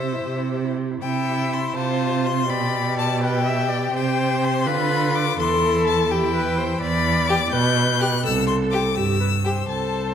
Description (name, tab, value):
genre	quick classical-period movement for string quartet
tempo	83 BPM (dotted quarters)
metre	6/8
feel	rubato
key	C major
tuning	A4 = 441 Hz
part	clear violin	melody	0.0-10.1 s	C5 to G6	-25 LUFS	left 8 dB	none
part	warm violin	second line	0.0-10.1 s	E4 to E5	-27 LUFS	left 4 dB	none
part	rich viola	accompaniment	0.0-10.1 s	E4 to E5	-25 LUFS	right 1 dB	none
part	rich cello	bass	0.0-10.1 s	C2 to D3	-23 LUFS	right 3 dB	none
room	wet scoring stage reverb, RT60 1.6 s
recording	none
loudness	-19 LUFS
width	side -8 dB against mid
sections	0.0-1.0 A section; 1.0-10.1 B section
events	none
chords	0.0 C; 1.8 F/C; 2.5 G/B; 3.9 C5; 4.7 Bdim/D; 5.4 C/E; 6.8 Em7; 8.2 C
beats	0.24 | 1.02 1.76 | 2.48 3.20 | 3.93 4.67 | 5.39 6.10 | 6.81 7.52 | 8.24 8.96 | 9.69